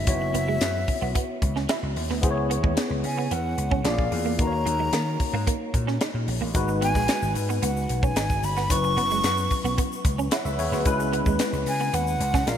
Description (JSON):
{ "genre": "polished 1980s jazz-funk pop", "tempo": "111 BPM", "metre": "4/4", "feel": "straight", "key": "C# dorian", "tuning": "A4 = 439 Hz", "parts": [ { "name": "breathy jazz flute", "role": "melody", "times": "0.0-12.6 s", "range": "E5 to C#6", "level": "-28 LUFS", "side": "equal", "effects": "ping-pong delay" }, { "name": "barky tine electric piano", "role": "accompaniment", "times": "0.0-12.6 s", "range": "F#3 to F#5", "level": "-29 LUFS", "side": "left 2 dB", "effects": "ensemble chorus" }, { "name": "vintage slap bass", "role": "bass", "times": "0.0-12.6 s", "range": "F#1 to D#3", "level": "-28 LUFS", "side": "equal", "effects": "none" }, { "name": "tight funk drum kit", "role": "drums", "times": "0.1-12.6 s", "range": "hi-hat, kick drum, snare drum", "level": "-27 LUFS", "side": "equal", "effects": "none" }, { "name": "semi-hollow electric guitar", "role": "riff", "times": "0.2-12.6 s", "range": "G#3 to E4", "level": "-31 LUFS", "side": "right 6 dB", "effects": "ensemble chorus" }, { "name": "egg shaker", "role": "percussion", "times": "6.5-12.6 s", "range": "none", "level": "-41 LUFS", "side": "left 8 dB", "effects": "none" } ], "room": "moderate lush hall reverb, RT60 2.6 s", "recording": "bright 1980s-style digital production", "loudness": "-22 LUFS", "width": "side -9 dB against mid", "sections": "0.0-12.6 A section", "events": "none", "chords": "0.1 F#7sus4; 2.2 C#m7; 3.9 A#7; 4.4 D#m7; 6.5 G#m7; 8.7 F#7sus4; 10.9 C#m7" }